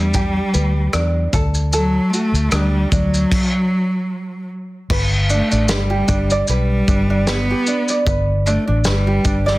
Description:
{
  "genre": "acoustic pop",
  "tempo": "76 BPM",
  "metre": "4/4",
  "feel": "swing 55% on 16ths",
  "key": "G major",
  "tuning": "A4 = 440 Hz",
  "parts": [
    { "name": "warm cello", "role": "melody", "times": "0.0-9.6 s", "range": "F#3 to B3", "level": "-20 LUFS", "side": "equal", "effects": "tape echo" },
    { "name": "tenor ukulele", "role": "accompaniment", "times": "0.0-9.6 s", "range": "D4 to D5", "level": "-23 LUFS", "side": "right 2 dB", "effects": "none" },
    { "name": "vintage muted fingered electric bass", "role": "bass", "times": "0.0-9.6 s", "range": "G1 to E2", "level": "-18 LUFS", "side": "equal", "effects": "none" },
    { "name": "loose indie drum kit", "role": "drums", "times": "0.1-9.6 s", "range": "crash cymbal, kick drum, rim click, shaker, snare drum", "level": "-21 LUFS", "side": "equal", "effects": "soft clipping on snare" }
  ],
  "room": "moderate studio reverb, RT60 0.6 s",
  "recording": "dense, heavily limited modern master",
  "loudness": "-15 LUFS",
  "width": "side -19 dB against mid",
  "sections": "0.0-4.9 A section; 4.9-9.6 B section",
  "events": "stop 3.3-4.9",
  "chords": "0.0 Em7; 1.3 D; 4.9 G",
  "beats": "0.15 0.94 | 1.73 2.52 3.32 4.11 | 4.90 5.69 6.48 7.27 | 8.06 8.85"
}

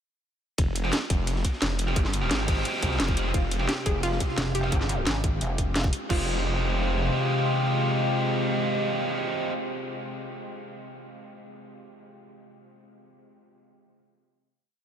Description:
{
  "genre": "dark technical drum and bass",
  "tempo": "174 BPM",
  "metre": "4/4",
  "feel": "straight",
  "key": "F minor",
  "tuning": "A4 = 440 Hz",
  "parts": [
    { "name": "snarling distorted saw bass", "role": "bass", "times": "0.6-7.1 s", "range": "F1 to C2", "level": "-28 LUFS", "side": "equal", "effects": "distortion, overdrive" },
    { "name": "crunchy breakbeat drum kit", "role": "drums", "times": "0.6-4.7 s", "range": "hi-hat, ride cymbal, snare drum", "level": "-41 LUFS", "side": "equal", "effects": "none" },
    { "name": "drum and bass drum kit", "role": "drums", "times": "0.6-6.2 s", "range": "crash cymbal, hi-hat, snare drum", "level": "-31 LUFS", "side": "equal", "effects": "none" },
    { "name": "electronic kick drum", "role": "drums", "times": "0.6-6.2 s", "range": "none", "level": "-26 LUFS", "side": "equal", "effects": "none" },
    { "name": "tight distorted guitar", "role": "stabs", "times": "0.8-9.5 s", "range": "Ab3 to G4", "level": "-31 LUFS", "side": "right 2 dB", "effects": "distortion, analog delay" },
    { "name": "metallic inharmonic drone", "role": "sustained chords", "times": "3.7-9.5 s", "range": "C3 to G4", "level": "-30 LUFS", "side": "left 1 dB", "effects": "chorus, built-in reverb, sidechain pumping" },
    { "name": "wide unison pluck", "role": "arpeggios", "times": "3.3-6.3 s", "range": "F4 to Ab4", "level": "-36 LUFS", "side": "left 1 dB", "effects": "sidechain pumping, analog delay" },
    { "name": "pulsing pluck wobble bass", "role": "bass", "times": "4.4-5.9 s", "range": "F1 to Ab1", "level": "-28 LUFS", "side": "equal", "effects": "chorus" }
  ],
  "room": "moderate huge ambient reverb, RT60 8.2 s",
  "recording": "dreamy mix soaked in reverb",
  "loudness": "-24 LUFS",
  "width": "side -8 dB against mid",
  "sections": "0.6-6.1 drop; 6.1-8.9 final chord",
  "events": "drop 0.6-6.1",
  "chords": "0.6 Fmadd9",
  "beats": "| 0.58 0.93 1.27 1.62 | 1.96 2.31 2.65 3.00 | 3.34 3.69 4.03 4.38 | 4.72 5.07 5.41 5.76 | 6.10 6.45 6.79 7.13 | 7.48 7.83 8.17 8.52"
}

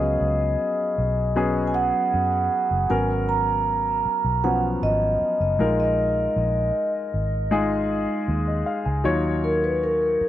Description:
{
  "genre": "soul",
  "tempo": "78 BPM",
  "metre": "4/4",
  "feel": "straight",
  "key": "unclear",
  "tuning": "A4 = 440 Hz",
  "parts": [
    { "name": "vibraphone with soft mallets", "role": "melody", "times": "0.0-10.3 s", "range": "Bb4 to Bb5", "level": "-23 LUFS", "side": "right 1 dB", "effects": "tape echo" },
    { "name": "warm concert grand piano", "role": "accompaniment", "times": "0.0-10.3 s", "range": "F3 to Ab5", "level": "-26 LUFS", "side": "left 2 dB", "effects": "none" },
    { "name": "vintage muted fingered electric bass", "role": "bass", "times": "0.0-10.2 s", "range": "Gb1 to Gb2", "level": "-26 LUFS", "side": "equal", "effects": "none" }
  ],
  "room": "moderate plate reverb, RT60 3.3 s",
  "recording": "none",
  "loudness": "-20 LUFS",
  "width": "side -12 dB against mid",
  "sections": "0.0-10.3 A section",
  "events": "none",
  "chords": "0.0 Db7sus4; 2.9 Abm11; 5.6 Bb7sus4; 9.1 Ebm9",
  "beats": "0.60 1.37 2.14 | 2.91 3.67 4.44 5.21 | 5.98 6.75 7.52 8.29 | 9.06 9.82"
}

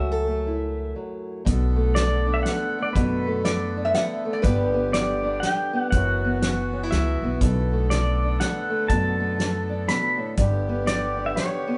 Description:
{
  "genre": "acoustic folk duo or small band",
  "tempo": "121 BPM",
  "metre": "3/4",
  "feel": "swing 60% on 8ths",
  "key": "B minor",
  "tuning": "A4 = 441 Hz",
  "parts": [
    { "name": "pedal steel guitar", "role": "melody", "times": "0.0-11.8 s", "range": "B4 to B5", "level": "-30 LUFS", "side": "equal", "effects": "none" },
    { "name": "fingerpicked acoustic archtop guitar", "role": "accompaniment", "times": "0.0-11.8 s", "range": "F#2 to A4", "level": "-30 LUFS", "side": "equal", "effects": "none" },
    { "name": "upright bass", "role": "bass", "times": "0.0-11.3 s", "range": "F#1 to F#2", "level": "-28 LUFS", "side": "equal", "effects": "none" },
    { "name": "accordion", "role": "sustained chords", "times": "1.5-11.8 s", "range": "D3 to A4", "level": "-35 LUFS", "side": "equal", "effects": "none" },
    { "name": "natural country drum kit", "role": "drums", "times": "1.5-11.5 s", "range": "hi-hat, kick drum, snare drum", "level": "-28 LUFS", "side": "equal", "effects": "none" },
    { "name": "metal-body resonator slide guitar", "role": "second line", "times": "3.4-4.8 s", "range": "B4 to F#5", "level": "-28 LUFS", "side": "equal", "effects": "none" }
  ],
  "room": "wet studio reverb, RT60 0.7 s",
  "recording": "band playing live in one room, nothing above 10.8 kHz",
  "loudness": "-24 LUFS",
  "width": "mono",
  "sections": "0.0-1.5 A section; 1.5-11.8 B section",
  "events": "none",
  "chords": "0.0 F#m7; 1.5 Bm7; 4.4 G; 5.9 F#7sus4; 7.4 Bm7; 10.4 G",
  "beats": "0.47 0.96 | 1.46 1.96 2.46 | 2.95 3.45 3.94 | 4.44 4.94 5.43 | 5.93 6.42 6.92 | 7.41 7.91 8.40 | 8.90 9.39 9.89 | 10.38 10.87 11.37"
}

